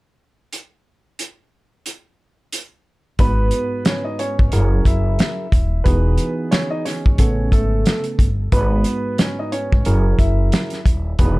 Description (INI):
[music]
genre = hip hop, boom-bap hip-hop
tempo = 90 BPM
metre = 4/4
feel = swing 58% on 16ths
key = G# minor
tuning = A4 = 440 Hz
[part]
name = warm soul drum kit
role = drums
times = 0.5-11.4 s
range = hi-hat, kick drum, snare drum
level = -17 LUFS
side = equal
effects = none
[part]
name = warm upright piano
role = melody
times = 3.2-11.4 s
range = A3 to E5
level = -25 LUFS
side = equal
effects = high-pass filter, low-pass filter, plate reverb, analog delay
[part]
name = tine electric piano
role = accompaniment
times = 3.2-11.4 s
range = G#2 to B4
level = -25 LUFS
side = right 2 dB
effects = high-pass filter, low-pass filter, plate reverb
[part]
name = upright bass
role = bass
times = 3.2-11.4 s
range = D#1 to A1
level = -18 LUFS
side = equal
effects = none
[sound]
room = light reverb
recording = dark, warm production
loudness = -16 LUFS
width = side -21 dB against mid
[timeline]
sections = 0.5-3.2 A section; 3.2-11.4 B section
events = none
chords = 0.5 N.C.; 3.2 G#m7; 4.5 F#13; 5.9 Emaj7; 7.2 Amaj7; 8.5 G#m7; 9.9 F#13